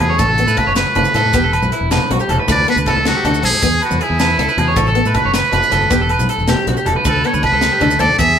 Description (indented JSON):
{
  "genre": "highlife guitar band",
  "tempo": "105 BPM (dotted quarters)",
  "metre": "12/8",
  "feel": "straight",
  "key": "D major",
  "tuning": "A4 = 438 Hz",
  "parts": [
    { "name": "trumpet with metal mute", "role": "melody", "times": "0.0-8.4 s", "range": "E4 to E5", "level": "-16 LUFS", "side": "right 1 dB", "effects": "none" },
    { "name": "electric guitar at the edge of break-up", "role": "arpeggios", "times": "0.0-8.4 s", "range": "E4 to C#5", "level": "-19 LUFS", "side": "right 1 dB", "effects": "spring reverb" },
    { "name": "fingered electric bass", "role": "bass", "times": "0.0-8.4 s", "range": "E1 to A2", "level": "-19 LUFS", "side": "equal", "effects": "none" },
    { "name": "tight funk drum kit", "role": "drums", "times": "0.0-8.3 s", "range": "hi-hat, kick drum, snare drum", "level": "-23 LUFS", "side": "equal", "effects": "none" },
    { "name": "agogo bells", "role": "percussion", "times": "0.0-8.2 s", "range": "none", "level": "-26 LUFS", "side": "right 2 dB", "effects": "none" },
    { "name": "congas", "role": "percussion", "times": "0.1-8.2 s", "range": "none", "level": "-23 LUFS", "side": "left 1 dB", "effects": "none" },
    { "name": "picked acoustic archtop guitar", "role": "accompaniment", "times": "0.2-8.3 s", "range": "A3 to D4", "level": "-22 LUFS", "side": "left 2 dB", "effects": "none" },
    { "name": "maracas", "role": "percussion", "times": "0.2-8.3 s", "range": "none", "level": "-32 LUFS", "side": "right 4 dB", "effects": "none" }
  ],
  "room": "moderate stone room reverb, RT60 1.4 s",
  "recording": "band playing live in one room",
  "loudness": "-12 LUFS",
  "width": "side -8 dB against mid",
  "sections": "0.0-8.4 A section",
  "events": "none",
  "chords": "0.2 Aadd9; 1.3 Em; 2.5 D; 3.6 E; 4.8 Aadd9; 5.9 Em; 7.1 D5"
}